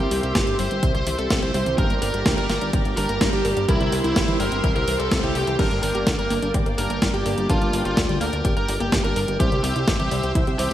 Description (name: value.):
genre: italo disco.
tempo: 126 BPM.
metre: 4/4.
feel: straight.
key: G dorian.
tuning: A4 = 440 Hz.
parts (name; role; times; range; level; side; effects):
bluesy overdriven lead guitar; melody; 0.0-10.7 s; E4 to C5; -26 LUFS; equal; distortion, low-pass filter, digital delay.
lush unison pad; sustained chords; 0.0-10.7 s; Bb3 to E6; -30 LUFS; equal; chorus.
wide unison pluck; arpeggios; 0.0-10.7 s; E3 to Bb4; -31 LUFS; left 1 dB; digital delay.
warm grand piano; stabs; 0.0-10.7 s; G3 to A5; -31 LUFS; right 2 dB; low-pass filter.
fat analog bass; bass; 0.0-10.7 s; G1 to D2; -26 LUFS; equal; none.
clean 12-bit digital drum machine; drums; 0.1-10.7 s; crash cymbal, hi-hat, snare drum; -26 LUFS; equal; overdrive.
electronic kick drum; drums; 0.4-10.4 s; none; -24 LUFS; equal; none.
room: moderate lush hall reverb, RT60 1.7 s.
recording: bright 1980s-style digital production, vinyl crackle.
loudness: -19 LUFS.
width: side -12 dB against mid.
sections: 0.0-5.6 A section; 5.6-10.7 B section.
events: none.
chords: 0.0 C; 1.8 Gm; 3.7 C; 5.6 Gm; 9.4 C.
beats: 0.35 0.83 1.30 | 1.78 2.26 2.73 3.21 | 3.69 4.16 4.64 5.12 | 5.59 6.07 6.54 7.02 | 7.50 7.97 8.45 8.92 | 9.40 9.88 10.35.